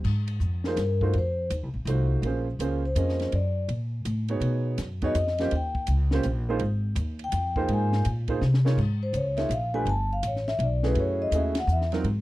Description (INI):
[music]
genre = jazz, small-group swing and bop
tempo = 165 BPM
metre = 3/4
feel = swing 64% on 8ths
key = Ab major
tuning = A4 = 440 Hz
[part]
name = upright bass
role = bass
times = 0.0-12.2 s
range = G1 to C3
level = -26 LUFS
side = equal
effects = none
[part]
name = compact cocktail drum kit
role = drums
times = 0.0-12.2 s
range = crash cymbal, hi-hat, kick drum, ride cymbal, snare drum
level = -36 LUFS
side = left 1 dB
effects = none
[part]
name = vibraphone with soft mallets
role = melody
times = 0.7-11.8 s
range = Bb4 to A5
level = -29 LUFS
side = left 3 dB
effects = none
[part]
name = warm grand piano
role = accompaniment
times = 0.7-12.0 s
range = Gb3 to Eb5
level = -30 LUFS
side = right 4 dB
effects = none
[sound]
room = little or no reverb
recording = dry, close 1970s-style studio recording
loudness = -24 LUFS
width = side -17 dB against mid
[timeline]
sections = 0.1-8.8 A section; 8.8-12.2 A section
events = vibraphone solo 0.1-12.2; drum fill 8.4-8.8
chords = 0.1 Ab69; 1.1 F7b9; 2.2 Bbm9; 3.3 Gb; 4.4 B6; 5.5 Eb13; 6.6 Ab69; 8.8 Db6; 9.9 Gadd9; 11.0 Gbm7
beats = | 0.05 0.41 0.78 | 1.14 1.51 1.87 | 2.24 2.60 2.97 | 3.33 3.69 4.06 | 4.42 4.79 5.15 | 5.51 5.88 6.24 | 6.60 6.97 7.33 | 7.69 8.05 8.42 | 8.78 9.14 9.51 | 9.87 10.23 10.60 | 10.96 11.32 11.68 | 12.04